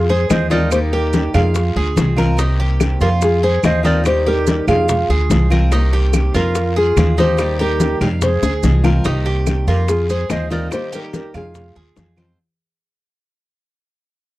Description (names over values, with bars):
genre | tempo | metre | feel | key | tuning
latin, Cuban son and guajira | 144 BPM | 4/4 | straight | unclear | A4 = 440 Hz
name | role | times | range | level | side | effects
nylon-string guitar | melody | 0.0-12.1 s | G4 to Eb5 | -19 LUFS | left 2 dB | none
hollow concert flute | second line | 0.0-12.1 s | Eb4 to C5 | -25 LUFS | right 6 dB | none
Cuban tres | arpeggios | 0.0-12.4 s | Eb4 to F5 | -24 LUFS | right 4 dB | none
upright bass | bass | 0.0-12.3 s | C2 to F2 | -17 LUFS | equal | none
congas | percussion | 0.1-12.4 s | none | -21 LUFS | left 1 dB | none
picked old ladder-braced acoustic guitar | accompaniment | 0.3-12.4 s | C3 to G4 | -25 LUFS | left 2 dB | none
bongos | percussion | 0.3-12.2 s | none | -24 LUFS | left 6 dB | none
claves | percussion | 0.3-12.4 s | none | -32 LUFS | right 4 dB | none
guiro | percussion | 0.3-12.4 s | none | -35 LUFS | left 8 dB | none
maracas | percussion | 0.3-12.4 s | none | -32 LUFS | right 9 dB | none
room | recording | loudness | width
little or no reverb | dry, close 1970s-style studio recording | -14 LUFS | side -17 dB against mid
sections
0.0-9.1 A section; 9.1-12.4 B section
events
drum fill 8.4-9.1; fade-out 9.1-12.4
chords
0.0 Fm; 0.7 Eb; 1.6 Fm; 2.4 Cm7; 3.2 Fm; 4.1 Eb; 4.9 Fm; 5.7 Cm7; 6.6 Fm; 7.4 Eb; 8.2 Fm; 9.1 Cm7; 9.9 Fm; 10.7 Eb; 11.6 Fm